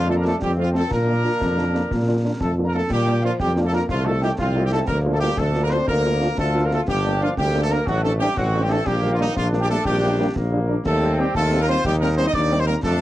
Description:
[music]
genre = military-style march for wind band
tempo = 121 BPM (dotted quarters)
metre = 6/8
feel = straight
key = Bb major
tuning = A4 = 441 Hz
[part]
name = clear trumpet section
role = melody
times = 0.0-13.0 s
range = Eb4 to Eb5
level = -25 LUFS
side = equal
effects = none
[part]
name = mellow hollow wooden piccolo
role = second line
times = 0.0-13.0 s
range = Eb5 to Eb6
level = -32 LUFS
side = right 1 dB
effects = none
[part]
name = clear trombone section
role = sustained chords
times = 0.0-13.0 s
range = A3 to F4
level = -31 LUFS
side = left 1 dB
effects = none
[part]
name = warm tuba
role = bass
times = 0.0-13.0 s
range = G1 to Bb2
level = -21 LUFS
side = equal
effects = none
[part]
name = mellow euphonium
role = second line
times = 0.1-13.0 s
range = Eb3 to Eb4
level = -29 LUFS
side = left 2 dB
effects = analog delay
[part]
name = mellow French horn section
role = accompaniment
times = 0.1-12.7 s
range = G3 to F4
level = -26 LUFS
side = right 1 dB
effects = none
[part]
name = concert snare drum, concert bass drum and clash cymbals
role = drums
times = 0.2-13.0 s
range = none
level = -31 LUFS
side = equal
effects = vintage 12-bit sampler grit
[sound]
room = studio ambience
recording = dry, gritty hardware recording, cassette tape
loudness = -18 LUFS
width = side -14 dB against mid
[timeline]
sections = 0.0-2.9 A section; 2.9-13.0 A section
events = none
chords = 0.4 F; 0.9 Bb; 3.9 F7/C; 4.9 Bb/D; 6.9 Gm; 7.9 D5/A; 8.9 Gm/Bb; 10.9 Cm/Eb

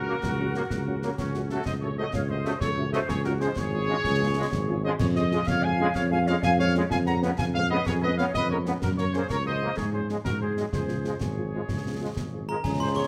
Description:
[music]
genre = military-style march for wind band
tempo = 126 BPM (dotted quarters)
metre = 6/8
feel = straight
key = Db major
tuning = A4 = 442 Hz
[part]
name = mellow trumpet section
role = melody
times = 0.0-13.1 s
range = Gb4 to Bb5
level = -34 LUFS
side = equal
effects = none
[part]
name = flute section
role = second line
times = 0.0-13.1 s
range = Db4 to Gb5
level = -35 LUFS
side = equal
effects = none
[part]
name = mellow tuba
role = bass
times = 0.0-13.0 s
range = Ab1 to Ab2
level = -30 LUFS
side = equal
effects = none
[part]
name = dark French horn section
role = accompaniment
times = 0.1-13.0 s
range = F3 to Gb4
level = -38 LUFS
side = equal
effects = none
[part]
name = clear trombone section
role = sustained chords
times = 0.1-13.1 s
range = Db3 to Cb4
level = -36 LUFS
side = equal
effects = none
[part]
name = concert snare drum, concert bass drum and clash cymbals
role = drums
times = 0.2-13.1 s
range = none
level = -35 LUFS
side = equal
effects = none
[part]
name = glockenspiel with brass mallets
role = second line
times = 12.5-13.1 s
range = Ab5 to Db6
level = -32 LUFS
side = equal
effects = none
[part]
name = warm euphonium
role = second line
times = 12.6-13.1 s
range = Db4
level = -36 LUFS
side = equal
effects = none
[sound]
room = moderate large studio reverb, RT60 1.2 s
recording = none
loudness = -27 LUFS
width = mono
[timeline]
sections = 0.0-12.6 A section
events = none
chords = 0.0 Gb/Db; 1.2 Gbm/Db; 3.1 Db; 5.0 Db/F; 6.9 Db7/F; 8.8 Gb; 9.8 Db/Ab; 10.3 Ab7; 10.7 Db

